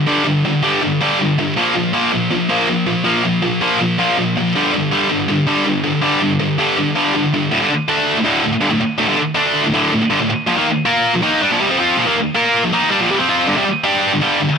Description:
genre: metal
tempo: 162 BPM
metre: 4/4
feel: straight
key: D phrygian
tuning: A4 = 440 Hz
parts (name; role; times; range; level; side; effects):
- heavy high-gain guitar; solo; 0.0-14.5 s; D2 to Bb4; -13 LUFS; equal; distortion, tape echo
room: moderate studio reverb, RT60 0.7 s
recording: none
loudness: -13 LUFS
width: side -6 dB against mid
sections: 0.0-7.5 A section; 7.5-14.6 B section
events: none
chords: 0.0 G5; 1.6 Bb5; 4.6 G5; 7.5 D5; 10.5 Bb5; 13.5 G5

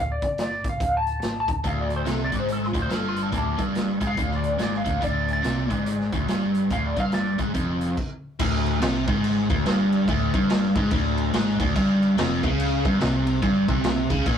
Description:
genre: blues rock power trio and southern rock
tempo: 142 BPM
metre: 4/4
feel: swing 62% on 8ths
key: unclear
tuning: A4 = 438 Hz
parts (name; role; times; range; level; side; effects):
- lightly driven lead guitar; melody; 0.0-7.4 s; D4 to A5; -27 LUFS; left 1 dB; wah
- vintage muted fingered electric bass; bass; 0.0-14.4 s; D1 to Db2; -30 LUFS; equal; none
- raw garage drum kit; drums; 0.2-14.4 s; crash cymbal, hi-hat, kick drum, snare drum; -28 LUFS; equal; none
- biting overdriven guitar; riff; 1.6-14.4 s; D2 to Db3; -23 LUFS; equal; none
room: moderate small room reverb, RT60 0.6 s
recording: rough rehearsal-room recording, tube saturation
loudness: -21 LUFS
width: side -8 dB against mid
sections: 0.0-8.4 A section; 8.4-14.4 B section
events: stop 8.0-8.4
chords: 0.0 D5; 8.4 G#maj7#11/D; 11.8 Bbm69/F (rootless)

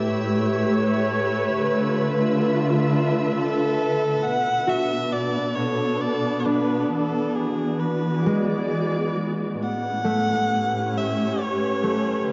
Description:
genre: ambient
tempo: 67 BPM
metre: 3/4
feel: straight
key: unclear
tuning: A4 = 436 Hz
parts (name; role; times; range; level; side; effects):
- muted studio string section; sustained chords; 0.0-12.3 s; A2 to E5; -25 LUFS; equal; none
- rich studio violin section; texture; 0.0-4.2 s; E5 to E6; -37 LUFS; equal; none
- rich electric violin; melody; 3.4-12.3 s; G#4 to F#5; -29 LUFS; equal; tape echo
- concert harp; arpeggios; 4.7-12.3 s; G#3 to F#4; -30 LUFS; equal; tape echo
room: wet lush hall reverb, RT60 2.9 s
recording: dark, warm production, nothing above 7.5 kHz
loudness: -23 LUFS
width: mono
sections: 0.0-4.2 A section; 4.2-12.3 B section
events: none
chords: 0.0 A7; 1.5 Dm6; 4.2 Bm7; 6.9 E7; 9.6 A7

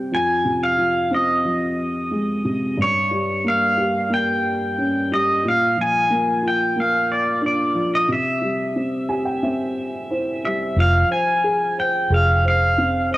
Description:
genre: folk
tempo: 90 BPM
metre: 4/4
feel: straight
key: F minor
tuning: A4 = 440 Hz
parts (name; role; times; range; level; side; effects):
- dark upright piano; accompaniment; 0.0-13.2 s; F2 to Ab5; -22 LUFS; equal; none
- pedal steel guitar; melody; 0.1-13.2 s; Db5 to Ab5; -20 LUFS; equal; cassette tape
- vintage muted fingered electric bass; bass; 10.8-13.1 s; F1; -18 LUFS; equal; none
room: moderate lush hall reverb, RT60 2.8 s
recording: home recording on cassette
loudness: -18 LUFS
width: side -16 dB against mid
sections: 0.0-10.8 A section; 10.8-13.2 A section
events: none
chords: 0.1 Fm; 2.8 Gdim; 5.4 Bb; 8.1 C; 10.8 Fm

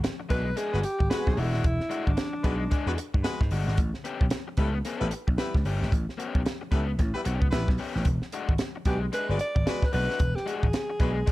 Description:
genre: funk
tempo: 112 BPM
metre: 4/4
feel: swing 60% on 16ths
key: E mixolydian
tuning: A4 = 441 Hz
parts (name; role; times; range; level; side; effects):
- crunchy overdriven guitar; accompaniment; 0.0-11.3 s; G#3 to A4; -35 LUFS; left 5 dB; plate reverb
- vintage slap bass; bass; 0.0-11.2 s; D#1 to G#2; -28 LUFS; equal; none
- crisp fusion drum kit; drums; 0.0-11.3 s; hi-hat, kick drum, snare drum; -27 LUFS; equal; none
- warm alto saxophone; melody; 0.3-3.1, 8.9-11.3 s; D4 to D5; -31 LUFS; equal; plate reverb
- mellow horn section; second line; 0.3-11.1 s; G3 to B4; -34 LUFS; left 1 dB; plate reverb
room: small room reverb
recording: dark, warm production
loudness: -24 LUFS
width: side -17 dB against mid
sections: 0.0-11.3 A section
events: none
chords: 0.0 E9 (rootless); 3.8 A9; 8.1 E9 (rootless)

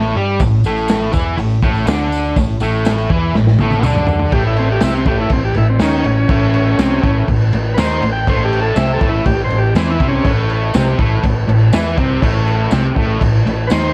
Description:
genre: garage rock duo or trio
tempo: 122 BPM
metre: 4/4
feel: straight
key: unclear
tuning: A4 = 440 Hz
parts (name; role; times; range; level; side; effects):
- fuzz guitar; riff; 0.0-13.9 s; A2 to G4; -19 LUFS; equal; distortion
- woody fretless electric bass; bass; 0.0-13.9 s; A1 to G2; -21 LUFS; equal; none
- crunchy breakbeat drum kit; drums; 0.4-13.8 s; crash cymbal, hi-hat, kick drum, snare drum, toms; -20 LUFS; equal; none
- tambourine; percussion; 0.4-13.8 s; none; -39 LUFS; equal; none
- overdriven combo organ; melody; 4.3-10.3, 13.7-13.9 s; C4 to G5; -21 LUFS; equal; none
room: moderate small room reverb, RT60 0.5 s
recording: cassette tape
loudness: -15 LUFS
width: mono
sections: 0.0-4.3 A section; 4.3-13.9 B section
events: drum fill 3.3-4.3; transistor combo organ solo 4.3-13.9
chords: 0.0 A5; 4.3 A

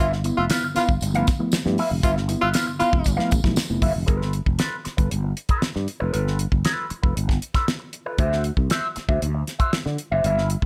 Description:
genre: funk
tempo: 117 BPM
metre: 4/4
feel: straight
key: unclear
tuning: A4 = 439 Hz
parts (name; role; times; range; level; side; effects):
- breathy tenor saxophone; second line; 0.0-3.1 s; F4; -28 LUFS; equal; none
- electric guitar with an envelope filter; accompaniment; 0.0-10.7 s; F4 to F5; -28 LUFS; equal; wah
- mellow reed electric piano; stabs; 0.0-4.1 s; G2 to E4; -29 LUFS; equal; fast tremolo
- sustaining fretless electric bass; bass; 0.0-10.7 s; F1 to D3; -26 LUFS; equal; lush chorus
- damped 70s drum kit; drums; 0.1-10.7 s; hi-hat, kick drum, snare drum; -26 LUFS; equal; none
- tambourine; percussion; 0.2-3.7 s; none; -39 LUFS; equal; none
room: light reverb, small room ambience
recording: none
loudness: -23 LUFS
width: mono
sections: 0.0-4.1 A section; 4.1-10.7 B section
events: none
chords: 0.0 G13; 4.1 G9; 8.2 D9

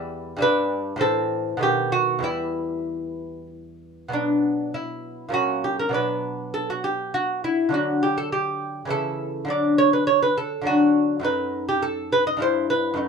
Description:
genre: classical, baroque-style dance for lute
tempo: 101 BPM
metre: 3/4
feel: rubato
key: E minor, B minor from 4.1 s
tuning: A4 = 440 Hz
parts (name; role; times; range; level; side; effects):
- lute; solo; 0.0-13.1 s; E2 to D#5; -21 LUFS; equal; none
room: wet studio reverb, RT60 0.5 s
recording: dark, warm production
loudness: -21 LUFS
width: side -6 dB against mid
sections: 0.0-4.1 A section; 4.1-13.1 A section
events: none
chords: 0.4 G; 1.0 Am; 1.6 B7; 2.2 Em; 4.1 Bm; 5.3 F#/A#; 5.9 Bm; 7.7 D; 8.9 A/C#; 9.5 D; 11.2 B7b13/F#; 12.4 Em/G

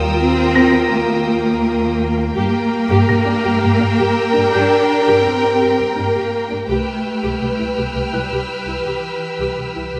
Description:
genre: cinematic, suspense film score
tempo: 83 BPM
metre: 3/4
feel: straight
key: unclear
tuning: A4 = 440 Hz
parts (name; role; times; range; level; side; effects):
- warm studio violin section; melody; 0.0-10.0 s; G5; -29 LUFS; equal; none
- rich studio violin section; second line; 0.0-10.0 s; Bb4 to B4; -26 LUFS; equal; none
- dark studio viola section; accompaniment; 0.0-10.0 s; D4 to G4; -27 LUFS; equal; none
- warm French horn section; sustained chords; 0.0-10.0 s; F4 to B4; -23 LUFS; equal; none
- warm studio cello section; bass; 0.0-10.0 s; E3 to D4; -22 LUFS; equal; none
- warm studio double bass section; bass; 0.0-10.0 s; C2 to G2; -25 LUFS; equal; none
- warm baby grand piano; texture; 0.0-10.0 s; C6 to C7; -28 LUFS; equal; none
- warm studio violin section; texture; 0.0-10.0 s; D6 to B6; -32 LUFS; equal; none
room: wet scoring stage reverb, RT60 1.8 s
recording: none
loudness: -17 LUFS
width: mono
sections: 0.0-10.0 A section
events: none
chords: 0.0 Ebadd9; 2.4 Gm; 6.7 Cmaj7

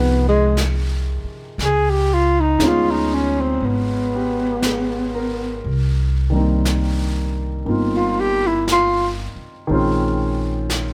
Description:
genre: jazz ballad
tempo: 59 BPM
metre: 4/4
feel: swing 66% on 8ths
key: unclear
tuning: A4 = 440 Hz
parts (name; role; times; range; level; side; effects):
- breathy tenor saxophone; melody; 0.0-9.1 s; Ab3 to Ab4; -21 LUFS; equal; none
- warm upright piano; accompaniment; 0.0-10.9 s; C3 to Bb4; -25 LUFS; equal; none
- upright bass; bass; 0.0-10.9 s; G1 to D2; -24 LUFS; equal; none
- jazz brush drum kit; drums; 0.6-10.9 s; brushed snare drum, hi-hat, snare drum; -32 LUFS; equal; none
room: little or no reverb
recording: close, detailed microphones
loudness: -19 LUFS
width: mono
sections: 0.0-10.9 A section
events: tenor saxophone solo 0.0-10.9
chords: 0.0 Fm11; 1.6 Db9; 5.6 Cm7; 9.7 Bbm11

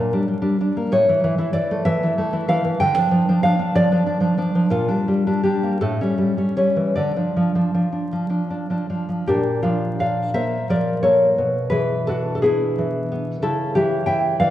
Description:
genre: romantic piece for solo classical guitar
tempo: 50-65 BPM (dotted quarters)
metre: 6/8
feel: rubato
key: D minor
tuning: A4 = 440 Hz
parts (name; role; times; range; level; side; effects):
- nylon-string guitar; solo; 0.0-14.5 s; A2 to A5; -18 LUFS; equal; none
room: wet recital hall reverb, RT60 1.8 s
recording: recorded in a church or concert hall, vinyl crackle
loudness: -18 LUFS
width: side -13 dB against mid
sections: 0.0-9.3 A section; 9.3-14.5 B section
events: none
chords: 0.0 Gm/Bb; 0.9 A; 2.8 Dm; 4.7 Gm/Bb; 5.8 A7; 7.0 Dm; 9.3 Bbmaj7; 11.4 E7/B; 13.4 A/C#

